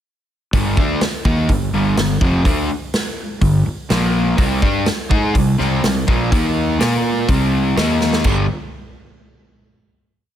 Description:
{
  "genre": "hard rock",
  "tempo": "124 BPM",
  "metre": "4/4",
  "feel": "straight",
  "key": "G minor",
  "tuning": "A4 = 445 Hz",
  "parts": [
    { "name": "crunchy overdriven guitar", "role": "riff", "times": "0.5-8.5 s", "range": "F2 to Bb4", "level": "-17 LUFS", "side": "equal", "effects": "none" },
    { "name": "fuzz fingered electric bass", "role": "bass", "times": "0.5-8.5 s", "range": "F1 to Bb2", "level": "-22 LUFS", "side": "equal", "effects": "overdrive" },
    { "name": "big rock drum kit", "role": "drums", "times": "0.5-8.4 s", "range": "crash cymbal, hi-hat, kick drum, snare drum", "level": "-20 LUFS", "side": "equal", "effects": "none" }
  ],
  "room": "light reverb, small room ambience",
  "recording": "none",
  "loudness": "-15 LUFS",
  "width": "side -10 dB against mid",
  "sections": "0.5-8.2 riff; 8.2-10.2 final chord",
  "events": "drum fill 8.0",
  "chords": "0.5 G5; 3.9 Bb5; 4.4 C5; 6.3 Eb5; 6.8 Bb5; 7.3 C5; 7.8 Eb5; 8.2 G5"
}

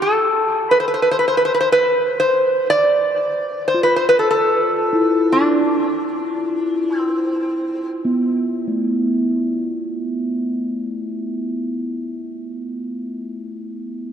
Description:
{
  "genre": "world meditative, free-time meditation music",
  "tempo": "free time",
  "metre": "none",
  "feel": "none",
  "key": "D dorian",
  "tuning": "A4 = 440 Hz",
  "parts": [
    { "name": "metal-body resonator slide guitar", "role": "melody", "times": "0.0-7.9 s", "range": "D4 to D5", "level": "-16 LUFS", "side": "equal", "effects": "tape echo" },
    { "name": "bronze singing bowl", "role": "texture", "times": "3.7-11.7 s", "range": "A3 to F4", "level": "-20 LUFS", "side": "equal", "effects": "none" }
  ],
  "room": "wet cathedral reverb, RT60 4.3 s",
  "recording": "dark, warm production",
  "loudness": "-16 LUFS",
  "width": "side -8 dB against mid",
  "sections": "0.0-8.7 A section; 8.7-12.4 B section",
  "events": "none",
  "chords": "none"
}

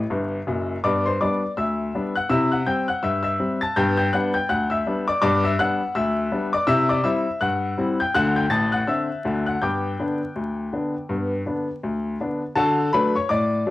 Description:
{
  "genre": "ragtime piano",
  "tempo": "82 BPM",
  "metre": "2/4",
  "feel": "swing 58% on 16ths",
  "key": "G major",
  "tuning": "A4 = 440 Hz",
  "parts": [
    { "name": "bright upright piano", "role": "solo", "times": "0.0-13.7 s", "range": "F#1 to A6", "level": "-20 LUFS", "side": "left 2 dB", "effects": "cassette tape" }
  ],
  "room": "wet small room reverb, RT60 0.5 s",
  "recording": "home recording on cassette, vinyl crackle",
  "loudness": "-20 LUFS",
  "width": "side -16 dB against mid",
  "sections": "0.8-12.6 A section; 12.6-13.7 B section",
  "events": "upright piano fill 0.0-0.8",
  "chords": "0.0 G; 2.3 C; 3.8 G; 6.7 C; 8.1 D7; 9.6 G; 12.6 D"
}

